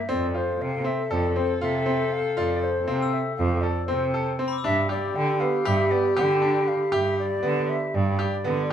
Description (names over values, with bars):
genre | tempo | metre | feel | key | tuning
contemporary instrumental, chamber music in an uneven meter | 237 BPM (eighths) | 9/8 | straight | unclear | A4 = 440 Hz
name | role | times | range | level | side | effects
mellow hollow jazz flute | melody | 0.0-8.7 s | C5 to G5 | -29 LUFS | left 3 dB | none
dark clarinet | second line | 0.1-8.7 s | G4 to A4 | -27 LUFS | left 1 dB | none
bright baby grand piano | arpeggios | 0.1-8.7 s | B3 to A4 | -28 LUFS | equal | none
muted cello | bass | 0.1-8.7 s | F2 to D3 | -27 LUFS | right 3 dB | none
glockenspiel with hard plastic mallets | texture | 2.0-6.7 s | B5 to G6 | -36 LUFS | left 9 dB | none
room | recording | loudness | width
moderate studio reverb, RT60 0.8 s | dark, warm production | -22 LUFS | side -9 dB against mid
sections
0.0-8.7 A section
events
none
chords
0.1 Fmaj7; 4.6 G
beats
| 0.10 0.35 0.61 0.86 1.11 1.36 1.62 1.87 2.12 | 2.37 2.63 2.88 3.13 3.38 3.64 3.89 4.14 4.39 | 4.65 4.90 5.15 5.41 5.66 5.91 6.16 6.42 6.67 | 6.92 7.18 7.43 7.68 7.94 8.19 8.44 8.70